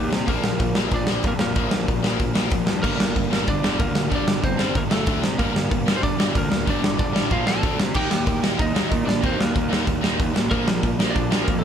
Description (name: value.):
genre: punk rock.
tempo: 188 BPM.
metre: 4/4.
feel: straight.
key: G minor.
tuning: A4 = 440 Hz.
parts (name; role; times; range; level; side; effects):
lightly driven lead guitar; melody; 0.0-11.6 s; A3 to A5; -27 LUFS; right 1 dB; none.
overdriven electric guitar; riff; 0.0-11.6 s; G2 to Eb4; -28 LUFS; left 6 dB; none.
fuzz picked electric bass; bass; 0.0-11.6 s; F1 to C3; -28 LUFS; equal; overdrive.
big rock drum kit; drums; 0.1-11.6 s; crash cymbal, hi-hat, kick drum, snare drum; -22 LUFS; equal; none.
crunchy overdriven guitar; riff; 2.8-11.6 s; G2 to Eb4; -28 LUFS; right 10 dB; none.
room: light reverb.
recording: band playing live in one room.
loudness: -19 LUFS.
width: side -8 dB against mid.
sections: 0.0-11.6 A section.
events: none.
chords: 0.3 Bb; 2.8 Gm; 5.1 D5; 5.4 Gm; 7.3 Bb5; 7.6 D5; 7.9 Eb; 10.5 Bb.